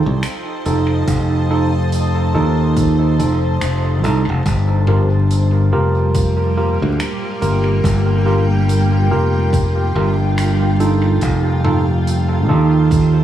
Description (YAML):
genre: ambient dub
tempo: 71 BPM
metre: 4/4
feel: swing 58% on 16ths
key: G minor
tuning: A4 = 439 Hz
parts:
  - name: granular cloud pad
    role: sustained chords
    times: 0.0-13.2 s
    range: G3 to A5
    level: -23 LUFS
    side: equal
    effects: built-in reverb
  - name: modern bright fingered electric bass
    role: bass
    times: 0.1-13.2 s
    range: F1 to Eb2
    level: -15 LUFS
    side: equal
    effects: none
  - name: big rock drum kit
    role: drums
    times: 0.2-13.1 s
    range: finger snaps, hi-hat, toms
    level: -28 LUFS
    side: left 3 dB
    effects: dub echo
  - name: tine electric piano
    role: stabs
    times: 0.7-13.2 s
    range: Eb4 to Bb4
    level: -21 LUFS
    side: right 3 dB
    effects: dub echo
  - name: electronic kick drum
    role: drums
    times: 1.1-13.1 s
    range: none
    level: -20 LUFS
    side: equal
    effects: none
room: studio reverb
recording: echo-heavy mix, vinyl crackle, studio ambience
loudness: -13 LUFS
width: side -11 dB against mid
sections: 0.0-13.2 A section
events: none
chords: 0.0 F7; 4.5 Gm7; 11.2 F7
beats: 0.23 | 1.08 1.93 2.77 3.62 | 4.46 5.30 6.15 7.00 | 7.84 8.69 9.53 10.38 | 11.22 12.07 12.91